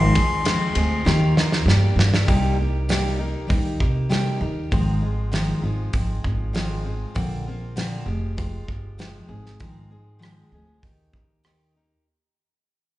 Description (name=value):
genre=folk rock and heartland rock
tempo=98 BPM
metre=4/4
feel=straight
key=C minor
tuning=A4 = 441 Hz
part: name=clear harmonica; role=melody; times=0.0-1.6 s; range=C6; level=-27 LUFS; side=left 3 dB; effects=slapback echo
part: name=picked steel-string acoustic guitar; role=accompaniment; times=0.0-12.1 s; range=F2 to Ab4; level=-25 LUFS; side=left 1 dB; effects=none
part: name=upright bass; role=bass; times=0.0-11.9 s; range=F1 to C3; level=-23 LUFS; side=equal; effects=none
part: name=loose indie drum kit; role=drums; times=0.2-11.6 s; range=hi-hat, kick drum, ride cymbal, rim click, snare drum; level=-24 LUFS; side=right 1 dB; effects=none
room=small room ambience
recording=live gig heard through the venue's PA, club reverb, nothing above 10.7 kHz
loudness=-20 LUFS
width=side -16 dB against mid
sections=0.0-2.3 A section; 2.3-12.0 B section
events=drum fill 1.1-2.3; fade-out 2.3-12.0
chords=0.0 Ab6; 1.1 Eb; 1.7 Gm; 2.3 Cm7; 4.7 Ab6; 7.1 Bbadd9; 8.1 Fmadd9; 9.3 Ab6; 10.8 Eb